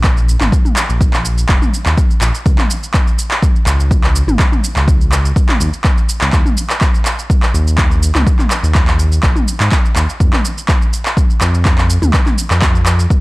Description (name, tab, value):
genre	afro house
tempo	124 BPM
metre	4/4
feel	straight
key	Bb minor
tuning	A4 = 441 Hz
part	smooth synth bass	bass	0.0-13.1 s	F1 to Ab2	-14 LUFS	equal	sidechain pumping
part	deep house drum kit	drums	0.0-13.2 s	handclaps, shaker, toms	-17 LUFS	equal	overdrive, studio reverb
part	electronic kick drum	drums	0.0-13.2 s	none	-13 LUFS	equal	overdrive, studio reverb
room	little or no reverb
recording	dry, gritty hardware recording, cassette tape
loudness	-11 LUFS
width	side -21 dB against mid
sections	0.0-13.2 A section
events	none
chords	none